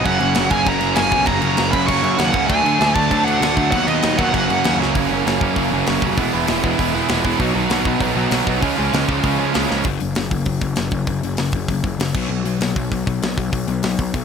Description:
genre	punk rock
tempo	196 BPM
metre	4/4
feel	straight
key	F# major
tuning	A4 = 441 Hz
part	smooth overdriven lead guitar	melody	0.0-4.8 s	D#5 to C#6	-19 LUFS	equal	none
part	crunchy overdriven guitar	riff	0.0-9.8 s	F#2 to E4	-21 LUFS	right 16 dB	none
part	scooped high-gain guitar	riff	0.0-9.8 s	F#2 to E#4	-25 LUFS	equal	distortion
part	sludgy distorted guitar	riff	0.0-14.2 s	E2 to D4	-23 LUFS	left 12 dB	overdrive
part	fuzz picked electric bass	bass	0.0-14.2 s	E1 to F#2	-24 LUFS	equal	overdrive
part	tight metal drum kit	drums	0.1-14.2 s	crash cymbal, hi-hat, kick drum, snare drum	-23 LUFS	equal	none
room	little or no reverb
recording	none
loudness	-16 LUFS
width	side -6 dB against mid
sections	0.0-5.0 A section; 5.0-9.9 B section; 9.9-14.2 C section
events	drum fill 4.8, 9.7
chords	0.1 F#; 2.5 D; 3.7 B/D#; 4.3 F#; 6.2 E; 7.4 B; 8.6 C#; 9.9 F#5; 12.2 B5

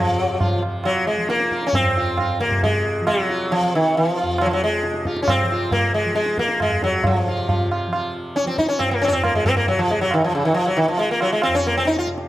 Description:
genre	indian classical, Hindustani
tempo	136 BPM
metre	4/4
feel	straight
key	F raga bhairavi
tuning	A4 = 440 Hz
part	sitar	melody	0.0-12.1 s	Db3 to F4	-19 LUFS	equal	none
part	tanpura	drone	0.0-12.3 s	F2 to F3	-29 LUFS	equal	none
part	tabla	percussion	0.4-12.3 s	none	-24 LUFS	right 1 dB	none
room	moderate recital hall reverb, RT60 1.6 s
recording	none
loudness	-18 LUFS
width	side -14 dB against mid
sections	0.0-12.3 A section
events	none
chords	none

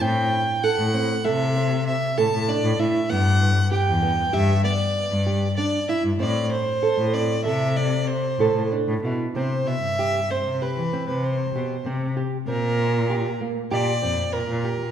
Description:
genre	contemporary instrumental, chamber music in an uneven meter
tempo	97 BPM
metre	5/4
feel	straight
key	C lydian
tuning	A4 = 443 Hz
part	warm violin	melody	0.0-14.9 s	Bb4 to A5	-25 LUFS	equal	none
part	nylon-string guitar	arpeggios	0.0-14.8 s	Bb3 to A4	-26 LUFS	right 5 dB	none
part	clear cello	bass	0.0-14.9 s	E2 to E3	-24 LUFS	left 2 dB	none
room	moderate concert hall reverb, RT60 2.0 s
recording	minimal, uncompressed stereo recording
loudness	-20 LUFS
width	side -9 dB against mid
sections	0.0-9.4 A section; 9.4-14.9 B section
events	none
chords	0.0 Am; 3.1 G; 6.2 Am; 9.4 Cmaj7; 12.5 Bb69

